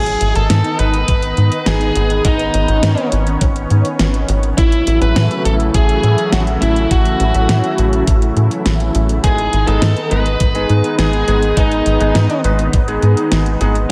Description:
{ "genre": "synthwave", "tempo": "103 BPM", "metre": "4/4", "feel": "straight", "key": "G# phrygian", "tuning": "A4 = 442 Hz", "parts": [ { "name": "biting lead guitar", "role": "melody", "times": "0.0-12.4 s", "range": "D#4 to B4", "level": "-21 LUFS", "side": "equal", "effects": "overdrive, analog delay" }, { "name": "analog string pad", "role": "sustained chords", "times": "0.0-13.9 s", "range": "C#3 to E4", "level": "-23 LUFS", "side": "equal", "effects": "ensemble chorus, sidechain pumping" }, { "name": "tight sequencer bass", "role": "bass", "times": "0.0-13.9 s", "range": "G#1 to A2", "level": "-18 LUFS", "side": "equal", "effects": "none" }, { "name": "pop drum kit", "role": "drums", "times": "0.1-13.9 s", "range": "hi-hat, snare drum", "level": "-24 LUFS", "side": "equal", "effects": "none" }, { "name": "electronic kick drum", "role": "drums", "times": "1.1-12.9 s", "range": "none", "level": "-18 LUFS", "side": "equal", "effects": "none" }, { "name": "clear electric grand piano", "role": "stabs", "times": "9.2-13.7 s", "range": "G#3 to B4", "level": "-23 LUFS", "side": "equal", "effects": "analog chorus" } ], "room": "moderate plate reverb, RT60 2.2 s", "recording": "dreamy mix soaked in reverb", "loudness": "-15 LUFS", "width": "mono", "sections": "0.0-13.9 A section", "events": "none", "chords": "0.0 G#m; 4.6 A6; 9.2 G#m" }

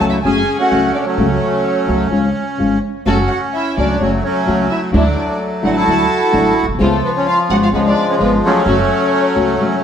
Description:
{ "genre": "tango", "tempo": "128 BPM", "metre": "4/4", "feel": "rubato", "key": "F# minor", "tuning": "A4 = 439 Hz", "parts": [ { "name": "bandoneon", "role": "melody", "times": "0.0-9.8 s", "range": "E#3 to A4", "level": "-16 LUFS", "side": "equal", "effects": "tape echo" }, { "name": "warm chamber violin section", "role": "second line", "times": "0.0-9.8 s", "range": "A4 to A5", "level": "-21 LUFS", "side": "equal", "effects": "tape echo" }, { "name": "nylon-string guitar", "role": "accompaniment", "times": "0.0-9.8 s", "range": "C#3 to G#4", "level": "-18 LUFS", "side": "left 2 dB", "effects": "none" }, { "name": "upright bass", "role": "bass", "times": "0.0-9.6 s", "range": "F#1 to D2", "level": "-22 LUFS", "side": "right 1 dB", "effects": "none" }, { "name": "dark chamber string section", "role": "stabs", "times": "3.1-9.8 s", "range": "F#3 to F#4", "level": "-25 LUFS", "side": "equal", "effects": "none" } ], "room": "wet studio reverb, RT60 0.9 s", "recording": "heard from further back in the room", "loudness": "-13 LUFS", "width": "side -8 dB against mid", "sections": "0.0-9.8 A section", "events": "break 9.6", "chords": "0.0 F#m; 1.2 F#m/C#; 2.1 C#; 3.1 F#m; 4.9 Dadd9; 6.8 C#7; 8.7 F#m" }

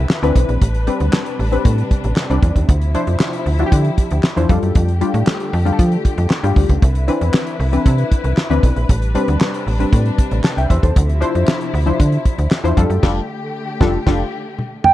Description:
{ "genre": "early-eighties boogie funk", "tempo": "116 BPM", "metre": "4/4", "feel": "straight", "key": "unclear", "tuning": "A4 = 440 Hz", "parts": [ { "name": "funky polysynth comp", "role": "accompaniment", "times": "0.0-14.2 s", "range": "E3 to A5", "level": "-20 LUFS", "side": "left 3 dB", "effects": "chorus" }, { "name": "warm studio string section", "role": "sustained chords", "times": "0.0-14.9 s", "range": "C3 to B4", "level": "-27 LUFS", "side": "left 2 dB", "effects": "none" }, { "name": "slap-like FM bass", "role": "bass", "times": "0.0-14.2 s", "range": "F1 to F3", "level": "-16 LUFS", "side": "equal", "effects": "none" }, { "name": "damped 70s drum kit", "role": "drums", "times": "0.1-14.9 s", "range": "crash cymbal, handclaps, hi-hat, kick drum, snare drum, toms", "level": "-16 LUFS", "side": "equal", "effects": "none" }, { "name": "hollow clarinet-like synth lead", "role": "melody", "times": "14.8-14.9 s", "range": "G5", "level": "-7 LUFS", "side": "right 5 dB", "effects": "chorus, phaser" } ], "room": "small room reverb", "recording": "dry, close 1970s-style studio recording", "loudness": "-14 LUFS", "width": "side -14 dB against mid", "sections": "0.0-14.9 A section", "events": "band accent 13.0-14.9; drum fill 14.6-14.9", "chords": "0.0 Cmaj9; 0.6 Am11; 2.7 Dm9; 4.5 F69; 6.8 Cmaj9; 8.9 Am11; 11.0 Dm9; 12.8 F69" }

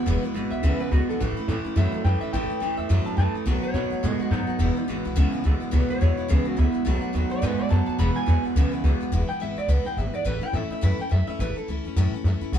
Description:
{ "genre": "rock", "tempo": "212 BPM", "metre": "4/4", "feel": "swing 58% on 8ths", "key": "E major", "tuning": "A4 = 439 Hz", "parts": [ { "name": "picked steel-string acoustic guitar", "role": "accompaniment", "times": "0.0-12.6 s", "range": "E2 to F#4", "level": "-31 LUFS", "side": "left 4 dB", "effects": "none" }, { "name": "electric guitar through a small old amp", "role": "riff", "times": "0.0-9.1 s", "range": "E2 to G#3", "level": "-27 LUFS", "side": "right 3 dB", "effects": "none" }, { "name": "upright bass", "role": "bass", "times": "0.1-12.6 s", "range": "E1 to B2", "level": "-23 LUFS", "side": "equal", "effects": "none" }, { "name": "electric guitar through a small old amp", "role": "melody", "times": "0.5-11.7 s", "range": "D#4 to B5", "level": "-31 LUFS", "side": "equal", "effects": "none" } ], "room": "light reverb", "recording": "band playing live in one room", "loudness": "-22 LUFS", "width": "side -9 dB against mid", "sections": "0.1-9.1 A section; 9.1-12.6 A section", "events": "clean electric guitar solo 0.1-12.6", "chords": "0.1 E; 1.2 A; 3.5 B7; 4.6 E; 6.9 B7; 8.0 E; 10.3 A" }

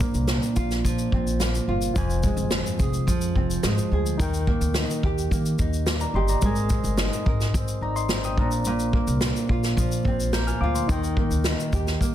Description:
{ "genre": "acoustic pop", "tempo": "108 BPM", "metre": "4/4", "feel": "straight", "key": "Eb major", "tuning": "A4 = 440 Hz", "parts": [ { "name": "barky reed electric piano", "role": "accompaniment", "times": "0.0-12.1 s", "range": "C4 to G6", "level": "-33 LUFS", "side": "left 4 dB", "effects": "overdrive, fast tremolo" }, { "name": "nylon-string guitar", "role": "accompaniment", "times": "0.0-12.1 s", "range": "F2 to Bb4", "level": "-26 LUFS", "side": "right 2 dB", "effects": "none" }, { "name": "upright bass", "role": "bass", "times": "0.0-12.0 s", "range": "F1 to Eb3", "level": "-26 LUFS", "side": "equal", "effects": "none" }, { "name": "unplugged drum kit", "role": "drums", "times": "0.0-12.1 s", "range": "kick drum, shaker, snare drum", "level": "-26 LUFS", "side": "equal", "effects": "none" } ], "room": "light reverb", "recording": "dense, heavily limited modern master", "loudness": "-21 LUFS", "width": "side -11 dB against mid", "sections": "0.0-12.1 A section", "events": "none", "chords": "0.0 Bbadd9; 2.0 Fm; 4.2 Eb; 6.4 Abadd9; 8.4 Bbadd9; 10.9 Eb" }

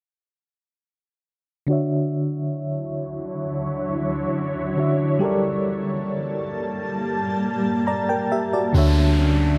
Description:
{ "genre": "R&B", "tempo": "68 BPM", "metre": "4/4", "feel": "straight", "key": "D major", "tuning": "A4 = 440 Hz", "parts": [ { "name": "FM electric piano with tremolo", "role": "accompaniment", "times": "1.7-9.6 s", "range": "D3 to Bb5", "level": "-26 LUFS", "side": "equal", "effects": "low-pass filter" }, { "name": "granular cloud pad", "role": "sustained chords", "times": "2.7-9.6 s", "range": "D3 to A5", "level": "-28 LUFS", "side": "equal", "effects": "built-in reverb, low-pass filter" }, { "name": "nylon-string guitar", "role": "arpeggios", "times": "8.7-9.6 s", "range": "D3 to C#4", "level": "-24 LUFS", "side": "equal", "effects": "none" }, { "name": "soft 808-style bass", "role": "bass", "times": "8.7-9.6 s", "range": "D2", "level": "-21 LUFS", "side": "equal", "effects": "none" }, { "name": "downlifter", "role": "sound effects", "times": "8.7-9.6 s", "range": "none", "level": "-32 LUFS", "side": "equal", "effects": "none" } ], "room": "light reverb, digital ambience", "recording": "none", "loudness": "-23 LUFS", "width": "mono", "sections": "1.7-8.7 A section", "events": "filter sweep 1.7-8.7", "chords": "1.7 Dmaj9; 5.2 Gmadd9; 8.7 Dmaj9" }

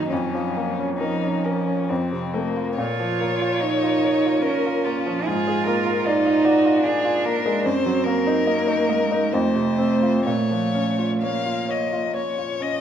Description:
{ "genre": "classical, slow romantic movement for piano trio", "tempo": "62-76 BPM", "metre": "3/4", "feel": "rubato", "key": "Bb minor", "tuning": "A4 = 442 Hz", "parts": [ { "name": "rich violin", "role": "melody", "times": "0.0-12.8 s", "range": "Bb3 to F5", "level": "-26 LUFS", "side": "left 5 dB", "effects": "none" }, { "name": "warm cello", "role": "second line", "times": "0.0-12.2 s", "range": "F3 to F4", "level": "-23 LUFS", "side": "right 4 dB", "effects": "none" }, { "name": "bright baby grand piano", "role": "accompaniment", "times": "0.0-12.8 s", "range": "F2 to Eb5", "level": "-23 LUFS", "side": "left 1 dB", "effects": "none" } ], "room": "wet recital hall reverb, RT60 1.5 s", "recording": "none", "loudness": "-19 LUFS", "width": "side -9 dB against mid", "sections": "0.0-12.8 A section", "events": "none", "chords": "0.1 Bbm/F; 1.9 F; 2.8 Bbm; 5.3 Bb7/Ab; 7.7 Ebm/Gb; 9.3 F; 10.3 Bbm" }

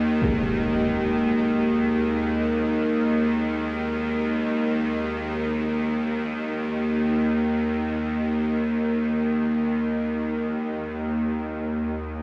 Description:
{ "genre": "dark ambient drone", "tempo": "free time", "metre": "none", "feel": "none", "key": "unclear", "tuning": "A4 = 438 Hz", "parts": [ { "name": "bowed-like drone", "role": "drone", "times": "0.0-12.2 s", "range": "Eb2 to Eb3", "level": "-25 LUFS", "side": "equal", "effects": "built-in reverb" }, { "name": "bronze singing bowl", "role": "texture", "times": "0.2-12.2 s", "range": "Ab3 to Ab4", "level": "-37 LUFS", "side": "equal", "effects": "none" } ], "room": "wet cathedral reverb, RT60 5.6 s", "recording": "small room ambience", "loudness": "-25 LUFS", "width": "mono", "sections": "0.0-12.2 A section", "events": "none", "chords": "0.2 Ebsus4" }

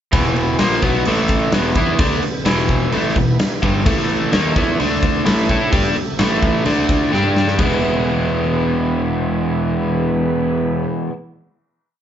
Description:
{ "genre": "blues rock power trio and southern rock", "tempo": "129 BPM", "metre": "4/4", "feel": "straight", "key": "E mixolydian", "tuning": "A4 = 440 Hz", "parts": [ { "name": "overdriven tonewheel organ", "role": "sustained chords", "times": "0.1-10.9 s", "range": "G3 to E5", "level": "-29 LUFS", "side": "right 4 dB", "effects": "chorus vibrato, slow rotary speaker" }, { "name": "overdriven electric guitar", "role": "riff", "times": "0.1-11.1 s", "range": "E2 to A4", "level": "-17 LUFS", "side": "equal", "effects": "none" }, { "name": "fuzz fingered electric bass", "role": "bass", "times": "0.1-10.8 s", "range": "E1 to A2", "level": "-24 LUFS", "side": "equal", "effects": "overdrive" }, { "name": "huge arena drum kit", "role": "drums", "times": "0.1-7.7 s", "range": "crash cymbal, kick drum, snare drum", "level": "-19 LUFS", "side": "equal", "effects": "none" } ], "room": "moderate large studio reverb, RT60 0.8 s", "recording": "band playing live in one room, nothing above 7.6 kHz", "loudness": "-15 LUFS", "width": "side -10 dB against mid", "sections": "0.1-7.6 riff; 7.6-11.3 final chord", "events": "drum fill 7.1-7.6", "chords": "0.1 E; 1.1 A5; 1.5 E; 3.9 A5; 4.8 D5; 5.3 A5; 6.7 D5; 7.1 G5; 7.6 E" }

